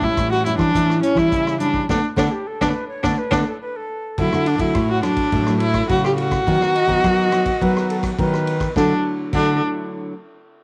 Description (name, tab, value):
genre	samba and choro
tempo	105 BPM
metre	4/4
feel	straight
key	D major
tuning	A4 = 442 Hz
part	warm viola	melody	0.0-9.6 s	C#4 to G4	-22 LUFS	equal	none
part	nylon-string guitar	accompaniment	0.0-10.1 s	A2 to E4	-27 LUFS	equal	cassette tape
part	nylon-string guitar	bass	0.0-9.6 s	A2 to F#3	-24 LUFS	equal	none
part	vintage drum kit	drums	0.0-9.5 s	crash cymbal, hi-hat, kick drum, ride cymbal, rim click, snare drum	-30 LUFS	equal	none
part	silver concert flute	second line	2.2-9.6 s	G4 to D#5	-30 LUFS	equal	cassette tape
room	light reverb, small room reverb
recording	home recording on cassette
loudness	-19 LUFS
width	mono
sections	0.0-4.2 A section; 4.2-8.8 B section; 8.8-10.6 C section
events	band accent 1.9-4.2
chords	0.0 A7; 1.9 D5; 4.2 Dadd9; 6.5 B/D#; 8.8 Dadd9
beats	0.18 0.75 1.32 | 1.90 2.47 3.04 3.61 | 4.19 4.76 5.33 5.90 | 6.47 7.04 7.62 8.19 | 8.76 9.33 9.90